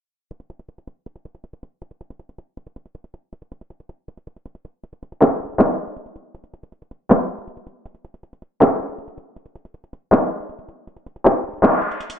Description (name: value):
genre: hip hop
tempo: 159 BPM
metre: 4/4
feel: half-time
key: none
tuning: none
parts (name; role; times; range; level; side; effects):
- trap drum kit; drums; 0.3-12.2 s; handclaps, hi-hat; -16 LUFS; equal; overdrive
room: moderate plate reverb, RT60 1.4 s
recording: low-pass filter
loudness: -16 LUFS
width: side -9 dB against mid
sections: 0.3-12.2 A section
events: filter sweep 0.3-12.2; kick muted 10.9-12.2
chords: none